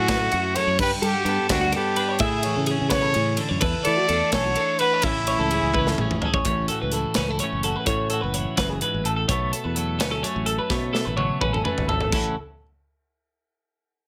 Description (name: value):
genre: math rock and midwest emo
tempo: 85 BPM (dotted quarters)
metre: 6/8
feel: straight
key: A major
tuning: A4 = 440 Hz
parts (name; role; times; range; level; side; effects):
- breathy trumpet; melody; 0.0-6.2 s; E4 to D5; -25 LUFS; equal; slapback echo
- twelve-string electric guitar; accompaniment; 0.0-12.4 s; F#2 to A4; -31 LUFS; equal; none
- twelve-string electric guitar; arpeggios; 0.0-12.3 s; F#4 to E5; -29 LUFS; equal; none
- fingered electric bass; bass; 0.0-12.3 s; F#1 to G3; -30 LUFS; equal; none
- modern studio drum kit; drums; 0.1-12.2 s; crash cymbal, hi-hat, kick drum, ride cymbal, snare drum, toms; -29 LUFS; equal; none
room: light reverb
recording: none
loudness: -23 LUFS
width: mono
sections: 0.0-6.5 A section; 6.5-12.1 B section; 12.1-13.5 C section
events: drum fill 5.7-6.5, 10.7-12.1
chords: 0.0 F#m7; 0.8 Gmaj7; 2.2 Amaj7; 3.6 E7sus4; 5.0 Amaj7; 6.5 A69; 9.3 B7sus2; 12.1 A6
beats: 0.10 | 0.80 1.51 | 2.21 2.92 | 3.63 4.33 | 5.04 5.75 | 6.46 7.17 | 7.87 8.58 | 9.29 10.00 | 10.71 11.42 | 12.12